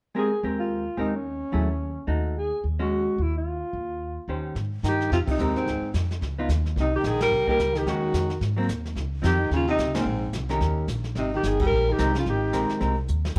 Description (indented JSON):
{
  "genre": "jazz, small-group swing and bop",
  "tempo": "218 BPM",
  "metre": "4/4",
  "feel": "swing 59% on 8ths",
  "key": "Ab major",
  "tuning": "A4 = 439 Hz",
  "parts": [
    { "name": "vintage hollow-body jazz guitar", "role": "accompaniment", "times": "0.1-13.0 s", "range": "Eb3 to C5", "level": "-31 LUFS", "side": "equal", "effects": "none" },
    { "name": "mellow alto saxophone", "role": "melody", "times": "0.2-12.8 s", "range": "C4 to Bb4", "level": "-29 LUFS", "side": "equal", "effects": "none" },
    { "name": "upright bass", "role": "bass", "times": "0.4-13.4 s", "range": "G1 to Ab2", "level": "-30 LUFS", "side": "equal", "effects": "tube saturation" },
    { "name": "jazz brush drum kit", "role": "drums", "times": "4.6-13.4 s", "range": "brushed snare drum, crash cymbal, hi-hat, kick drum, ride cymbal, snare drum", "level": "-36 LUFS", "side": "equal", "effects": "none" },
    { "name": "clear baritone saxophone", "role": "second line", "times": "4.8-13.4 s", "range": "Ab2 to G3", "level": "-32 LUFS", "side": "equal", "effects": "none" }
  ],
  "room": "moderate large studio reverb, RT60 1.0 s",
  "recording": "worn, warbling old tape, cassette tape, warbly pitch drift",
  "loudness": "-25 LUFS",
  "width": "mono",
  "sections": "0.2-4.6 A section; 4.6-13.4 B section",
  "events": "band accent 5.2, 7.2, 9.9, 11.6; drum fill 13.1",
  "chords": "0.2 Abmaj9; 1.3 Gbm9; 1.8 Ebm7b5; 2.4 Ebm11; 3.5 Ebsus2; 4.0 Eb13; 4.6 Abmaj9; 5.7 Dm7b5; 6.2 Db9; 6.8 Cm7; 7.9 Ebm11; 8.4 Ab9; 9.0 Dbmaj9; 10.1 Bbm9; 10.6 Eb7; 11.2 Abmaj9",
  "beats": "| 0.16 0.43 0.71 0.98 | 1.26 1.53 1.81 2.08 | 2.36 2.63 2.91 3.18 | 3.46 3.73 4.01 4.28 | 4.56 4.83 5.11 5.38 | 5.66 5.93 6.21 6.49 | 6.76 7.04 7.31 7.58 | 7.86 8.13 8.41 8.68 | 8.96 9.23 9.51 9.78 | 10.06 10.33 10.61 10.88 | 11.16 11.43 11.71 11.98 | 12.26 12.53 12.81 13.08 | 13.36"
}